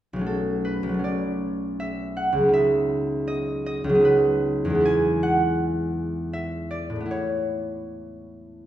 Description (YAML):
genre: classical, solo harp piece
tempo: 79 BPM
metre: 3/4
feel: uneven beats, rubato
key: unclear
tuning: A4 = 442 Hz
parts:
  - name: concert harp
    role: solo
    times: 0.1-8.7 s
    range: B1 to G#5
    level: -22 LUFS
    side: right 1 dB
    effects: none
room: wet recital hall reverb, RT60 1.4 s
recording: heard from further back in the room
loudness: -21 LUFS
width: side -12 dB against mid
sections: 0.3-8.7 A section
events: none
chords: 0.3 Bm9; 2.5 C#m11; 4.9 Eadd9; 7.1 Aadd9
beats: | 0.25 1.03 1.79 | 2.53 3.28 4.05 | 4.85 5.60 6.33 | 7.10 7.89